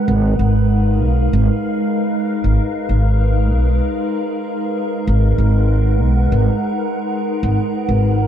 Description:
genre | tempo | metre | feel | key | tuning
ambient dub | 96 BPM | 4/4 | swing 55% on 16ths | G# dorian | A4 = 440 Hz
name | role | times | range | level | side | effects
soft additive organ-like pad | sustained chords | 0.0-8.3 s | G#3 to F#5 | -19 LUFS | right 1 dB | ensemble chorus, built-in reverb
upright bass | bass | 0.1-8.3 s | G#1 to B1 | -14 LUFS | equal | none
room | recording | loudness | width
light reverb, small room ambience | dark, warm production | -14 LUFS | side -10 dB against mid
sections
0.0-8.3 A section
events
none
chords
0.0 G#m9

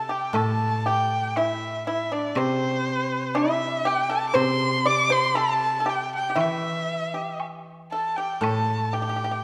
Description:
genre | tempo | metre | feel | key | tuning
chinese traditional, Chinese chamber ensemble | 59 BPM | 2/4 | rubato | C gong mode | A4 = 439 Hz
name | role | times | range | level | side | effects
clear erhu | melody | 0.0-9.4 s | C5 to D6 | -28 LUFS | equal | none
pipa | second line | 0.0-9.4 s | C4 to D5 | -29 LUFS | equal | none
guzheng | accompaniment | 0.0-9.4 s | A2 to E3 | -31 LUFS | equal | none
woodblock | percussion | 0.4-8.7 s | none | -40 LUFS | equal | none
room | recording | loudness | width
wet scoring stage reverb, RT60 1.8 s | none | -24 LUFS | mono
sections
0.4-9.4 A section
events
none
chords
none

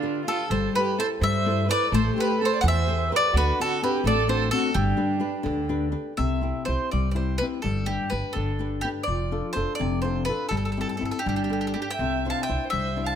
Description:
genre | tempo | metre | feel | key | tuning
italian folk, Italian serenade | 84 BPM (dotted quarters) | 6/8 | rubato | G major, C major from 6.2 s | A4 = 440 Hz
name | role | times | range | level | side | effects
bowl-back mandolin | melody | 0.0-13.2 s | F4 to A5 | -27 LUFS | equal | none
dark violin | second line | 0.0-5.7, 11.2-13.2 s | D4 to F5 | -29 LUFS | right 7 dB | none
flamenco guitar | accompaniment | 0.0-13.2 s | C3 to C5 | -28 LUFS | left 5 dB | none
upright bass | bass | 0.5-13.2 s | F1 to G2 | -27 LUFS | right 1 dB | none
room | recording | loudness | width
light reverb | close, detailed microphones | -22 LUFS | side -8 dB against mid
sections
0.0-6.2 A section; 6.2-13.2 B section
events
none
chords
0.5 C6/G; 1.9 Am7; 3.3 D7; 4.7 G; 6.2 C; 7.6 G; 9.1 F6; 10.5 C/G; 11.2 Gadd9; 12.0 Cadd9

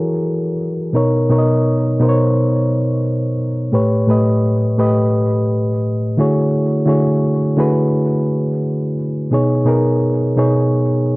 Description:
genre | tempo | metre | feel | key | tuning
hip hop | 86 BPM | 4/4 | swing 66% on 16ths | unclear | A4 = 442 Hz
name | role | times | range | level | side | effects
mellow reed electric piano | solo | 0.0-11.2 s | A2 to D#5 | -14 LUFS | equal | cassette tape, low-pass filter, tape echo
room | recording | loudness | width
moderate spring reverb, RT60 1.5 s, digital ambience | worn, warbling old tape, cassette tape, warbly pitch drift | -14 LUFS | side -23 dB against mid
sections
0.0-11.2 A section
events
none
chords
0.0 E6; 0.9 Bmaj9; 3.7 A9; 6.2 Dmaj9#11; 9.3 B69

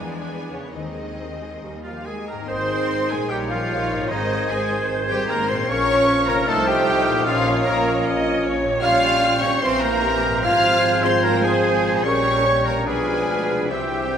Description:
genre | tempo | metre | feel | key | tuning
classical, dramatic, fast romantic movement for symphony orchestra | 136-154 BPM | 4/4 | rubato | Ab major, F minor from 8.8 s | A4 = 440 Hz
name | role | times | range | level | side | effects
warm symphonic violin section | melody | 0.0-14.2 s | Db5 to F6 | -28 LUFS | left 3 dB | none
bright symphonic violin section | second line | 0.0-14.2 s | Db4 to F5 | -30 LUFS | left 3 dB | none
rich symphonic viola section | accompaniment | 0.0-14.2 s | G3 to E5 | -28 LUFS | right 3 dB | none
concert harp | arpeggios | 0.0-14.2 s | Ab2 to C6 | -33 LUFS | left 5 dB | none
rich symphonic cello section | bass | 0.0-14.2 s | Db3 to F4 | -29 LUFS | right 3 dB | none
rich symphonic double bass section | bass | 0.0-14.2 s | Ab1 to E2 | -31 LUFS | right 3 dB | none
clear oboe | second line | 1.8-14.2 s | Eb4 to F5 | -30 LUFS | right 1 dB | none
mellow trumpet section | stabs | 1.9-14.2 s | Eb4 to F5 | -24 LUFS | equal | none
clear clarinet | second line | 2.5-14.2 s | Ab4 to Eb5 | -30 LUFS | right 1 dB | none
silver concert flute | second line | 2.5-14.2 s | Eb6 to Ab6 | -30 LUFS | left 2 dB | none
mellow bassoon | accompaniment | 2.5-14.2 s | Eb3 to C4 | -28 LUFS | right 2 dB | none
dark French horn section | sustained chords | 2.5-14.2 s | E3 to Eb4 | -26 LUFS | left 3 dB | none
room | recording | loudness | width
wet concert hall reverb, RT60 2.1 s | none | -17 LUFS | side -8 dB against mid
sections
0.0-2.5 A section; 2.5-14.2 B section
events
none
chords
0.0 E7; 0.8 Ab/Eb; 1.6 Eb; 2.5 Ab; 3.3 Eb7/Bb; 4.1 Ab; 5.7 Bbm; 6.5 F7/C; 7.3 Bbm; 8.8 Gm7b5/Bb; 9.6 C7/Bb; 10.4 Fm/Ab; 12.1 Gdim/Bb; 12.9 Bdim7

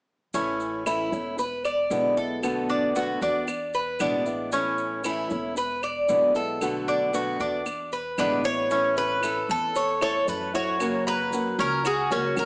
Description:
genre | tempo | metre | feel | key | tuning
latin, Cuban son and guajira | 115 BPM | 4/4 | straight | A major | A4 = 440 Hz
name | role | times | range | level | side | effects
fingerpicked steel-string acoustic guitar | accompaniment | 0.3-12.5 s | B2 to F#4 | -29 LUFS | equal | none
Cuban tres | arpeggios | 0.3-12.5 s | C#4 to A#5 | -26 LUFS | equal | none
upright bass | bass | 0.3-12.5 s | E1 to F#2 | -38 LUFS | equal | none
maracas | percussion | 0.3-12.5 s | none | -43 LUFS | right 1 dB | none
claves | percussion | 0.9-12.5 s | none | -36 LUFS | equal | none
Cuban tres | melody | 8.2-12.5 s | F#4 to C#5 | -25 LUFS | equal | analog delay
room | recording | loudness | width
moderate large studio reverb, RT60 1.1 s | small speaker sound | -23 LUFS | side -34 dB against mid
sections
0.3-8.7 A section; 8.7-12.5 B section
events
none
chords
0.3 A; 1.4 E7; 2.4 Bm7; 3.5 E7; 4.5 A; 5.6 E7; 6.6 Bm7; 7.7 E7; 8.7 A; 10.8 F#

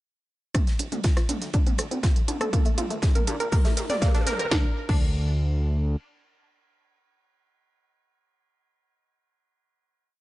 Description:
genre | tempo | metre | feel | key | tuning
melodic techno | 121 BPM | 4/4 | straight | D minor | A4 = 439 Hz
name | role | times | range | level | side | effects
wide unison pluck | arpeggios | 0.5-5.0 s | A3 to D5 | -30 LUFS | right 1 dB | sidechain pumping, digital delay
fat analog bass | bass | 0.5-6.0 s | D1 to Bb2 | -28 LUFS | equal | sidechain pumping, high-pass filter
big rock drum kit | drums | 0.5-4.4 s | hi-hat, ride cymbal, snare drum | -40 LUFS | right 1 dB | sidechain pumping on cymbals, high-pass filter on cymbals, sidechain pumping on hats, high-pass filter on hats, high-pass filter on snare, high-pass filter on room
electronic kick drum | drums | 0.5-5.0 s | none | -22 LUFS | equal | none
techno drum kit | drums | 0.5-5.0 s | crash cymbal, hi-hat, rim click, snare drum, toms | -30 LUFS | equal | none
room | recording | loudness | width
light reverb | nothing above 10.8 kHz | -22 LUFS | side -17 dB against mid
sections
0.5-4.5 build; 4.5-8.5 final chord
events
build-up 0.5-4.5; drum fill 0.5-4.5; filter sweep on synth pluck 0.5-4.5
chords
0.5 D5; 2.5 Bb; 4.5 N.C.

